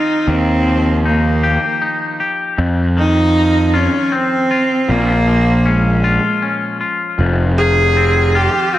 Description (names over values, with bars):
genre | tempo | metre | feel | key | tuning
post-rock | 78 BPM | 3/4 | straight | F minor | A4 = 440 Hz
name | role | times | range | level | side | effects
rich cello | melody | 0.0-8.8 s | Ab3 to Ab4 | -16 LUFS | right 1 dB | digital delay
twangy electric guitar | arpeggios | 0.0-8.8 s | F2 to G4 | -19 LUFS | left 3 dB | spring reverb, digital delay
fuzz picked electric bass | bass | 0.3-8.5 s | F1 to F2 | -14 LUFS | equal | overdrive
room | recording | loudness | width
moderate concert hall reverb, RT60 1.8 s, small room reverb | none | -12 LUFS | side -14 dB against mid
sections
0.0-8.8 A section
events
none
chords
0.3 Ebadd9; 2.6 F5; 4.9 Bbm7; 7.2 Fm7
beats
| 0.28 1.05 1.82 | 2.59 3.36 4.13 | 4.89 5.66 6.43 | 7.20 7.97 8.74